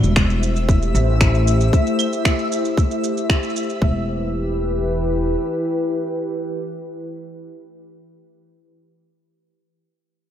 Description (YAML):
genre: folktronica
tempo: 115 BPM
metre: 4/4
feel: straight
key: E minor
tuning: A4 = 441 Hz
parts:
  - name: warbly tape-like pad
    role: sustained chords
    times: 0.0-8.2 s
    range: E3 to C5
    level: -23 LUFS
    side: left 1 dB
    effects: chorus, built-in reverb
  - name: kora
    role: arpeggios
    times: 0.0-0.8 s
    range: B3 to F#4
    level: -41 LUFS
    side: right 1 dB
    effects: none
  - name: upright bass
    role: bass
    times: 0.0-5.3 s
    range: E1 to A1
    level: -19 LUFS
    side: equal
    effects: none
  - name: electronic shaker, finger snaps and claves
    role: drums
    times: 0.0-3.8 s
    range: none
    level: -26 LUFS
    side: right 2 dB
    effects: none
  - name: twinkling granular texture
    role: texture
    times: 0.1-3.8 s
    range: E5 to E6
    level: -29 LUFS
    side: equal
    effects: built-in reverb, lush chorus
  - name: electronic kick drum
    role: drums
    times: 0.2-3.9 s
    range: none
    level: -17 LUFS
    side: equal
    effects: none
room: moderate plate reverb, RT60 2.8 s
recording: dreamy mix soaked in reverb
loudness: -17 LUFS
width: side -10 dB against mid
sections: 0.0-3.8 A section; 3.8-8.0 B section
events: none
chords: 0.0 Am7; 3.8 Em